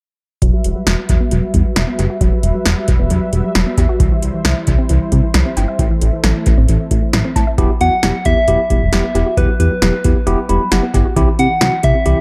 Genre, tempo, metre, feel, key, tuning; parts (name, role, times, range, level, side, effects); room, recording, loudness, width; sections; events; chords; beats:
synth-pop; 134 BPM; 4/4; straight; E minor; A4 = 440 Hz
warm analog pad; sustained chords; 0.4-7.6 s; G3 to E5; -26 LUFS; equal; chorus
soft round pluck; arpeggios; 0.4-12.1 s; E3 to A5; -25 LUFS; equal; chorus, low-pass filter, dub echo
chorused synth bass; bass; 0.4-12.1 s; E1 to C3; -18 LUFS; equal
electro analog drum machine; drums; 0.4-12.2 s; hi-hat, kick drum, snare drum; -19 LUFS; equal; overdrive, dub echo
tine electric piano; accompaniment; 7.6-12.2 s; B3 to B5; -22 LUFS; equal
soft struck synth lead; melody; 7.8-12.2 s; B4 to F#5; -20 LUFS; equal; chorus, dub echo
moderate spring reverb, RT60 1.1 s, digital ambience; echo-heavy mix; -15 LUFS; mono
0.4-7.6 A section; 7.6-12.2 B section
filter sweep on synth pluck 0.4-7.6; tine electric piano fill 10.3-11.2
0.4 Emadd9; 4.0 C; 5.8 Am; 7.6 Emadd9; 11.2 C
| 0.42 0.87 1.31 1.76 | 2.21 2.66 3.11 3.55 | 4.00 4.45 4.90 5.34 | 5.79 6.24 6.69 7.13 | 7.58 8.03 8.48 8.93 | 9.37 9.82 10.27 10.72 | 11.16 11.61 12.06